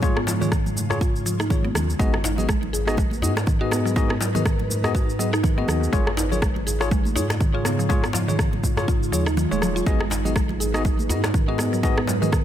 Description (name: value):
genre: afro house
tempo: 122 BPM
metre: 4/4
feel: swing 57% on 16ths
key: G# dorian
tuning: A4 = 443 Hz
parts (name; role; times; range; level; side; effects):
- ethereal airy pad; sustained chords; 0.0-12.4 s; C#3 to B4; -30 LUFS; right 2 dB; ensemble chorus, built-in reverb, phaser, sidechain pumping
- mallet-like synth pluck; arpeggios; 0.0-12.4 s; D#3 to G#4; -28 LUFS; right 1 dB; chorus, sidechain pumping, tape echo
- tine electric piano; stabs; 0.0-12.3 s; B3 to D#5; -28 LUFS; left 4 dB; fast stereo tremolo, sidechain pumping, tape echo
- warm sub bass; bass; 0.0-12.4 s; D#1 to G#2; -27 LUFS; equal; sidechain pumping
- electronic kick drum; drums; 0.0-12.4 s; none; -22 LUFS; equal; overdrive
- electronic shaker and rim click; drums; 0.0-12.4 s; none; -29 LUFS; equal; overdrive
- congas; percussion; 0.0-12.3 s; none; -32 LUFS; right 4 dB; none
- djembe; percussion; 0.0-12.2 s; none; -34 LUFS; left 3 dB; none
room: light reverb, digital ambience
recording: none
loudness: -20 LUFS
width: side -10 dB against mid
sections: 0.0-12.4 A section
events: kick drops out 9.4-9.9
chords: 0.0 C#/G#; 2.0 G#m7; 5.9 C#/G#; 9.9 G#m7